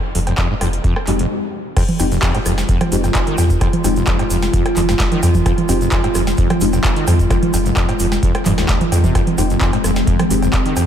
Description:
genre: acid house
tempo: 130 BPM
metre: 4/4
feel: straight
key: F minor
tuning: A4 = 436 Hz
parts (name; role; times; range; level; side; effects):
- overdriven acid bass; riff; 0.1-10.8 s; F1 to Eb3; -21 LUFS; equal; ensemble chorus, diffuse ambient delay
- booming analog drum machine; drums; 0.1-10.9 s; congas, cowbell, crash cymbal, handclaps, hi-hat, rim click, snare drum; -21 LUFS; right 2 dB; overdrive
- round analog bass; bass; 0.2-10.9 s; F1 to F2; -19 LUFS; equal; sidechain pumping
- electronic kick drum; drums; 0.4-10.6 s; none; -18 LUFS; equal; overdrive
- deep mellow chord stab; stabs; 1.1-10.4 s; Ab3 to G4; -24 LUFS; left 3 dB; chorus, phaser, diffuse ambient delay
- warbly tape-like pad; sustained chords; 2.2-10.9 s; Eb3 to F4; -21 LUFS; equal; chorus, built-in reverb, sidechain pumping
- egg shaker; percussion; 1.8-10.9 s; none; -32 LUFS; right 3 dB; none
room: moderate church reverb, RT60 3.1 s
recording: dreamy mix soaked in reverb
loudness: -14 LUFS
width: side -9 dB against mid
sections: 0.0-1.8 A section; 1.8-10.9 B section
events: stop 1.3-1.8; drop 1.8-10.9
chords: 0.0 Fm7

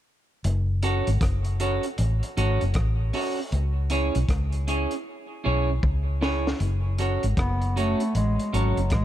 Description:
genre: roots reggae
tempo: 78 BPM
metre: 4/4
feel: swing 63% on 16ths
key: F# minor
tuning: A4 = 440 Hz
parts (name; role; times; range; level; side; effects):
- vintage muted fingered electric bass; bass; 0.4-9.0 s; F#1 to C#2; -24 LUFS; equal; none
- crunchy breakbeat drum kit; drums; 0.4-9.0 s; hi-hat, kick drum, rim click, snare drum; -29 LUFS; equal; none
- clean electric guitar; accompaniment; 0.8-8.8 s; C#4 to C#5; -28 LUFS; right 3 dB; dub echo
- breathy bass clarinet; melody; 7.4-9.0 s; F#3 to B3; -27 LUFS; equal; dub echo
room: little or no reverb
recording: none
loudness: -22 LUFS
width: side -12 dB against mid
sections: 0.4-6.6 A section; 6.6-9.0 B section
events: drum fill 5.1-6.6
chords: 0.4 F#m; 3.5 C#m; 6.6 F#m

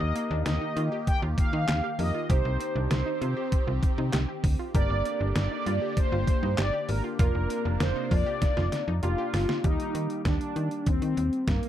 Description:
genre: synth-pop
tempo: 98 BPM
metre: 4/4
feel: straight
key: Eb major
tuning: A4 = 440 Hz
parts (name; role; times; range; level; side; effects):
- mellow synth brass; melody; 0.0-11.7 s; Bb3 to G5; -31 LUFS; equal; chorus, ping-pong delay
- warm concert grand piano; accompaniment; 0.0-11.7 s; Eb3 to C5; -38 LUFS; left 4 dB; none
- phased analog pad; sustained chords; 0.0-9.6 s; C3 to G4; -36 LUFS; left 1 dB; phaser, chorus
- analog pluck; arpeggios; 0.0-9.6 s; Bb3 to G4; -38 LUFS; right 2 dB; chorus, ping-pong delay
- slap-like FM bass; bass; 0.0-11.6 s; F1 to Eb3; -28 LUFS; equal; none
- detuned 8-bit digital drum machine; drums; 0.2-11.7 s; handclaps, hi-hat, kick drum, snare drum; -27 LUFS; equal; overdrive
room: light reverb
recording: dark, warm production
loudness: -24 LUFS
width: side -11 dB against mid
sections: 0.0-9.6 A section; 9.6-11.7 B section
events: drum fill 8.4-9.6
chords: 0.0 Eb; 2.3 Cmadd9; 4.7 Gm; 7.2 Bbadd9/F; 9.6 Eb

